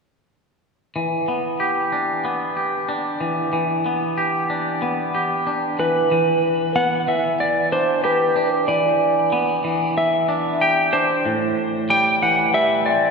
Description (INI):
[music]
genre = rock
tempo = 93 BPM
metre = 4/4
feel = straight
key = E minor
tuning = A4 = 440 Hz
[part]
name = twangy electric guitar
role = arpeggios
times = 1.0-13.1 s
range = A2 to G4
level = -20 LUFS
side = left 1 dB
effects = spring reverb
[part]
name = clean lap steel guitar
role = melody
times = 5.8-13.1 s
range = B4 to G5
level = -18 LUFS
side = right 1 dB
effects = none
[sound]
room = wet church reverb, RT60 3.1 s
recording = recorded in a church or concert hall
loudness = -18 LUFS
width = side -4 dB against mid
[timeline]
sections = 1.0-6.1 A section; 6.1-13.1 B section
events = none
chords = 1.0 Em7; 11.3 Am7